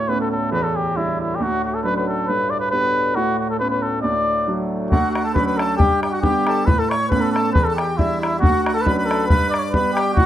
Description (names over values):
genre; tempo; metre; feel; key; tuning
celtic folk, Celtic polka; 137 BPM; 2/4; swing 53% on 8ths; D major; A4 = 445 Hz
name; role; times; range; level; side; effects
trumpet with cup mute; melody; 0.0-10.3 s; E4 to D5; -20 LUFS; left 1 dB; plate reverb
warm upright piano; accompaniment; 0.0-10.3 s; D2 to E4; -23 LUFS; right 2 dB; none
pedal harmonium; drone; 0.0-5.0 s; D2 to A2; -30 LUFS; left 3 dB; plate reverb
accordion; second line; 4.9-10.3 s; E4 to D5; -26 LUFS; left 2 dB; plate reverb
bodhran; percussion; 4.9-10.3 s; none; -20 LUFS; left 1 dB; none
room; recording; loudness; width
wet small room reverb, RT60 0.5 s; rough home demo mix; -17 LUFS; side -11 dB against mid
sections
0.0-4.9 A section; 4.9-10.3 A section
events
none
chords
0.0 Aadd9; 0.5 Em7; 1.4 Dmaj7; 2.3 G; 3.2 Aadd9; 4.0 D; 4.9 Dmaj7; 5.8 G; 6.7 Aadd9; 7.5 Em7; 8.4 Dmaj7; 9.3 G